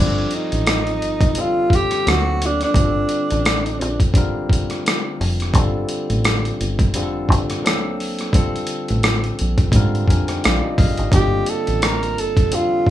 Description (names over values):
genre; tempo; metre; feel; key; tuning
R&B, neo-soul; 86 BPM; 4/4; swing 56% on 16ths; G minor; A4 = 439 Hz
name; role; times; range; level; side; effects
breathy tenor saxophone; melody; 0.0-4.0, 11.1-12.9 s; C4 to Bb4; -20 LUFS; right 1 dB; analog delay
barky tine electric piano; accompaniment; 0.0-12.9 s; D3 to Ab5; -25 LUFS; left 2 dB; overdrive
deep dub fingered electric bass; bass; 0.0-12.9 s; F1 to Ab2; -21 LUFS; equal; none
boom bap sampler-style drum kit; drums; 0.3-12.9 s; hi-hat, kick drum, rim click; -19 LUFS; equal; none
room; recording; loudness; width
little or no reverb; rough home demo mix, small room ambience; -16 LUFS; side -12 dB against mid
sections
0.0-12.9 A section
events
tine electric piano fill 9.7-11.1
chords
0.0 Gsus2; 1.4 Fadd9; 2.1 D7b13; 2.7 Gm9; 4.1 Ab69; 5.5 Gsus2; 6.9 Fadd9; 7.6 D7b13; 8.3 Gm9; 9.7 Ab69; 11.1 Gm9